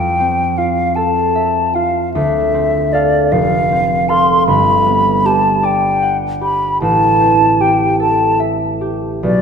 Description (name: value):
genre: classical, impressionist duo for flute and harp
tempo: 51 BPM (dotted quarters)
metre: 6/8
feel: rubato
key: unclear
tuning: A4 = 440 Hz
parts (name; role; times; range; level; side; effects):
- hollow concert flute; melody; 0.0-9.4 s; D5 to C6; -14 LUFS; left 1 dB; none
- concert harp; accompaniment; 0.0-9.4 s; F1 to F#5; -16 LUFS; right 2 dB; none
room: moderate concert hall reverb, RT60 2.4 s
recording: minimal, uncompressed stereo recording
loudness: -12 LUFS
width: side -6 dB against mid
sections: 0.0-9.4 A section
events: none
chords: 0.0 Fmaj7; 2.1 Dm9; 3.3 F; 4.5 Gmaj7; 6.8 Am7